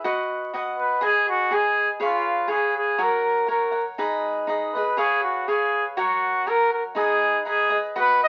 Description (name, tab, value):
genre	mexican folk, mariachi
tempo	121 BPM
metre	2/4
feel	straight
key	unclear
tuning	A4 = 440 Hz
part	cavaquinho	accompaniment	0.0-8.3 s	D#4 to G#5	-28 LUFS	equal	none
part	mellow trumpet	melody	0.8-8.3 s	E#4 to D#5	-23 LUFS	equal	none
room	moderate studio ambience, RT60 0.5 s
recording	very old 78 rpm record, vinyl crackle, nothing above 7.6 kHz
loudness	-23 LUFS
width	mono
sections	0.0-8.3 A section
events	none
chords	0.0 B; 1.0 G#m; 2.0 C#7; 3.0 F#; 4.0 G#m; 5.0 C#7; 6.0 F#; 7.0 G#m